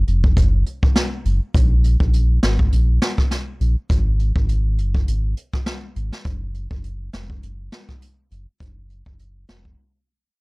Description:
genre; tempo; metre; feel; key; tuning
dancehall; 102 BPM; 4/4; swing 56% on 16ths; unclear; A4 = 440 Hz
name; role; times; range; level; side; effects
sub bass with octave; bass; 0.0-9.8 s; F1 to Bb1; -18 LUFS; equal; none
jazz brush drum kit; drums; 0.1-9.8 s; hi-hat, kick drum, rim click, snare drum; -20 LUFS; equal; none
room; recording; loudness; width
little or no reverb; dry, gritty hardware recording, transformer saturation, cassette tape; -17 LUFS; side -27 dB against mid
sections
0.0-10.4 A section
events
fade-out 0.0-10.4; break 9.8-10.4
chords
none

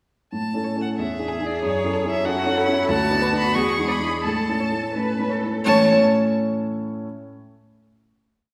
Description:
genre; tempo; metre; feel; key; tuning
quick classical-period movement for piano quartet; 84-95 BPM; 2/4; rubato; A major; A4 = 442 Hz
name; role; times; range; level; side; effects
rich violin; melody; 0.3-6.0 s; C#5 to C#6; -28 LUFS; equal; none
dark baby grand piano; accompaniment; 0.3-7.1 s; D2 to C#5; -24 LUFS; equal; none
rich violin; second line; 0.6-6.0 s; G#4 to D5; -28 LUFS; equal; none
warm cello; second line; 1.0-6.0 s; E3 to B4; -30 LUFS; equal; none
room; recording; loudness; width
wet scoring stage reverb, RT60 1.5 s; recorded in a church or concert hall; -22 LUFS; mono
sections
0.3-5.7 A section; 5.7-7.0 final chord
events
slowing down 2.3-5.7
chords
0.3 A; 1.0 E7; 1.6 F#m7; 2.9 Bm7/D; 3.6 E7; 4.3 A

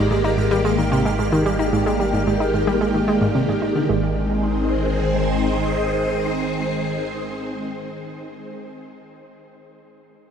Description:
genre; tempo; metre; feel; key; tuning
ambient, sequencer-driven space music; 111 BPM; 4/4; straight; Ab lydian; A4 = 443 Hz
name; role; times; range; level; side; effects
phased string machine; sustained chords; 0.0-8.8 s; Eb3 to C5; -22 LUFS; equal; ensemble chorus, phaser
analog pluck; riff; 0.0-4.1 s; Ab2 to Eb4; -22 LUFS; equal; chorus, tape echo
analog drone; bass; 0.0-5.5 s; Ab1; -27 LUFS; equal; chorus, tube saturation
pulsing gated texture; texture; 0.0-3.9 s; D5 to F6; -34 LUFS; right 1 dB; chorus, built-in reverb
room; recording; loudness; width
wet huge ambient reverb, RT60 8.0 s; none; -18 LUFS; side -7 dB against mid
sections
0.0-3.9 A section; 3.9-8.2 B section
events
none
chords
0.0 Absus2; 3.9 Ab

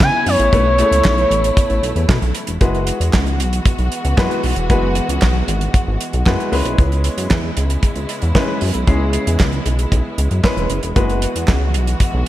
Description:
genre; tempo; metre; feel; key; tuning
early-eighties boogie funk; 115 BPM; 4/4; straight; unclear; A4 = 440 Hz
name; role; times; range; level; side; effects
expressive portamento lead; melody; 0.0-2.1 s; C#5 to G#5; -16 LUFS; equal; chorus, slapback echo
warm studio string section; sustained chords; 0.0-12.3 s; C#3 to F#4; -25 LUFS; equal; none
chorused synth bass; bass; 0.0-12.2 s; E1 to C#3; -18 LUFS; equal; none
damped 70s drum kit; drums; 0.0-12.1 s; hi-hat, kick drum, snare drum; -18 LUFS; equal; none
group handclap; percussion; 0.0-11.6 s; none; -31 LUFS; right 4 dB; slapback echo
clear grand piano; accompaniment; 0.5-11.5 s; G#3 to B4; -22 LUFS; left 2 dB; none
room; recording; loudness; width
light reverb; none; -14 LUFS; side -14 dB against mid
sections
0.0-2.6 A section; 2.6-12.3 B section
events
none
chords
0.0 C#m7; 0.5 B9sus4; 2.6 F#9sus4

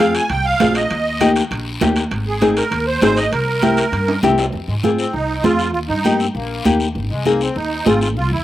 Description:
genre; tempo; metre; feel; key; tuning
latin, cumbia; 198 BPM; 4/4; straight; F minor; A4 = 440 Hz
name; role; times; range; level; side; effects
musette accordion; melody; 0.0-8.4 s; Ab3 to Ab5; -20 LUFS; right 2 dB; none
nylon-string guitar; accompaniment; 0.0-8.1 s; Bb3 to Ab4; -18 LUFS; left 4 dB; none
upright bass; bass; 0.0-8.4 s; Ab1 to Ab2; -23 LUFS; equal; none
congas; percussion; 0.0-8.3 s; none; -21 LUFS; right 4 dB; none
timbales; percussion; 0.0-4.5 s; none; -27 LUFS; right 4 dB; slapback echo
guiro; percussion; 0.1-8.4 s; none; -29 LUFS; left 5 dB; none
room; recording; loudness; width
light reverb; recorded outdoors, with no room sound; -15 LUFS; side -13 dB against mid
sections
0.0-4.5 A section; 4.5-8.4 B section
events
drum fill 4.1-4.5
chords
0.0 Fm; 0.9 Eb; 2.1 Ab; 3.3 C7; 4.5 Fm; 5.7 Eb; 7.0 Ab

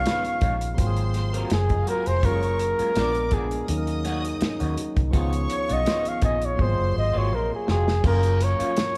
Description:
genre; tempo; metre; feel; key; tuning
lush 1970s-style soul; 83 BPM; 4/4; swing 54% on 16ths; F# major; A4 = 440 Hz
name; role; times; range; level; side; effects
warm flugelhorn; melody; 0.0-9.0 s; G#4 to E#5; -28 LUFS; equal; tape echo
warm studio string section; second line; 0.0-7.7 s; D#4 to D#6; -39 LUFS; equal; none
barky tine electric piano; accompaniment; 0.0-9.0 s; E#3 to A#4; -35 LUFS; equal; overdrive
warm French horn section; sustained chords; 0.0-9.0 s; A#2 to E#4; -38 LUFS; equal; none
vintage muted fingered electric bass; bass; 0.0-8.6 s; E#1 to D#2; -28 LUFS; equal; none
electric guitar through a small old amp; riff; 0.1-8.8 s; D#3 to C#5; -37 LUFS; equal; phaser
warm soul drum kit; drums; 0.1-9.0 s; crash cymbal, hi-hat, kick drum, snare drum; -28 LUFS; equal; none
room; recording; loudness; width
moderate large studio reverb, RT60 1.2 s; band playing live in one room; -24 LUFS; mono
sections
0.0-8.0 A section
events
flugelhorn solo 0.0-8.0; drum fill 6.6-8.0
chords
0.0 C#9; 0.8 G#13; 2.2 F#maj9; 3.0 A#7b9; 3.7 D#m7; 5.1 C#9; 6.6 G#13; 8.0 F#maj7

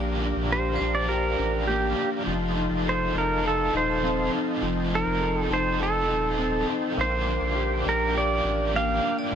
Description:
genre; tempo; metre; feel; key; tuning
dream pop; 102 BPM; 4/4; straight; Bb major; A4 = 436 Hz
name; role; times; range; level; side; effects
overdriven electric guitar; accompaniment; 0.0-9.3 s; Bb2 to A4; -32 LUFS; right 1 dB; tremolo, wide subtle chorus
percussive tonewheel organ; sustained chords; 0.0-9.3 s; G4 to D6; -34 LUFS; left 1 dB; chorus vibrato, slow rotary speaker
mellow electric guitar; arpeggios; 0.0-9.3 s; F3 to A4; -29 LUFS; left 3 dB; wide subtle chorus, analog delay
saturated sub bass; bass; 0.0-9.3 s; Eb1 to Bb1; -30 LUFS; equal; none
vibraphone with hard mallets; texture; 0.0-4.6, 9.2-9.3 s; A4 to D5; -42 LUFS; left 3 dB; none
pedal steel guitar; melody; 0.5-9.2 s; G4 to F5; -26 LUFS; right 3 dB; analog delay
room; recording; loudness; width
light reverb, digital ambience; dry, gritty hardware recording; -22 LUFS; side -8 dB against mid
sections
0.0-9.3 A section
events
none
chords
0.0 Bb6; 2.3 F7; 7.0 Bb6

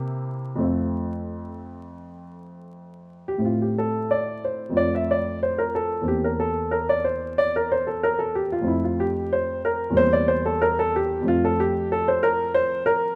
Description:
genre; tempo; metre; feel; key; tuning
classical, baroque-style suite movement for grand piano; 92 BPM; 4/4; rubato; F major; A4 = 439 Hz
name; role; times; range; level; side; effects
dark baby grand piano; solo; 0.0-13.2 s; E2 to E5; -24 LUFS; equal; none
room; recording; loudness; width
moderate scoring stage reverb, RT60 1.5 s; close, detailed microphones, vinyl crackle; -23 LUFS; mono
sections
0.0-3.4 A section; 3.4-13.2 A section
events
none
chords
0.0 C7; 0.6 F; 3.4 Amadd11; 4.8 F; 6.1 C7/E; 8.7 F; 10.0 C7/E; 11.3 F

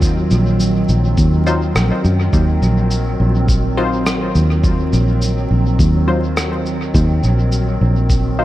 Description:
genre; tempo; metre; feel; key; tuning
ambient dub; 104 BPM; 4/4; swing 58% on 16ths; Eb dorian; A4 = 440 Hz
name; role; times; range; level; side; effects
warbly tape-like pad; sustained chords; 0.0-8.4 s; Eb3 to Eb5; -21 LUFS; equal; chorus, built-in reverb, phaser
filtered dub chord stab; stabs; 0.0-8.4 s; Gb3 to C5; -24 LUFS; left 2 dB; chorus, dub echo
fingered electric bass; bass; 0.0-8.4 s; Bb1 to Gb2; -15 LUFS; equal; none
electronic cabasa and rim click; drums; 0.0-8.2 s; none; -26 LUFS; equal; dub echo
electronic kick drum; drums; 0.0-8.2 s; none; -16 LUFS; equal; none
wind-like tuned noise texture; texture; 0.0-8.4 s; Gb3; -25 LUFS; right 2 dB; built-in reverb
room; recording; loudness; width
little or no reverb; vinyl crackle; -13 LUFS; side -15 dB against mid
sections
0.0-8.4 A section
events
none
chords
0.0 Ebm69

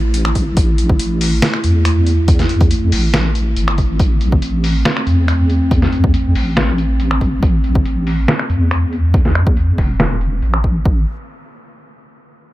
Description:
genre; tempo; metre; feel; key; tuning
deep dubstep; 140 BPM; 4/4; half-time; A minor; A4 = 445 Hz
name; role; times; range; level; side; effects
dark analog pad; sustained chords; 0.0-10.9 s; A3 to E4; -22 LUFS; equal; lush chorus
deep soft wobble bass; bass; 0.0-11.1 s; E1 to E2; -15 LUFS; equal; chorus
trip hop sampler-style drum kit; drums; 0.1-10.7 s; finger snaps, hi-hat, snare drum; -20 LUFS; equal; low-pass filter on hats, low-pass filter on snare, low-pass filter on room
electronic kick drum; drums; 0.4-10.9 s; none; -15 LUFS; equal; overdrive
room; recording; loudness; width
little or no reverb; none; -12 LUFS; side -16 dB against mid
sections
0.0-10.9 A section; 10.9-12.5 B section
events
filter sweep on drum 0.0-10.9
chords
0.0 A5; 10.9 N.C.

